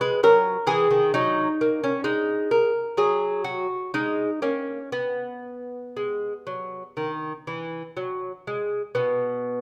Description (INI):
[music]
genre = classical, baroque-style dance for lute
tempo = 58-66 BPM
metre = 4/4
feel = rubato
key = B major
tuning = A4 = 440 Hz
[part]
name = lute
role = solo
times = 0.0-9.6 s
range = B2 to B4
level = -25 LUFS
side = equal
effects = none
[sound]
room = moderate recital hall reverb, RT60 1.4 s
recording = none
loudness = -25 LUFS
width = mono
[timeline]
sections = 0.0-8.9 A section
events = none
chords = 0.0 F#13; 1.1 F#69; 4.9 B5; 8.9 N.C.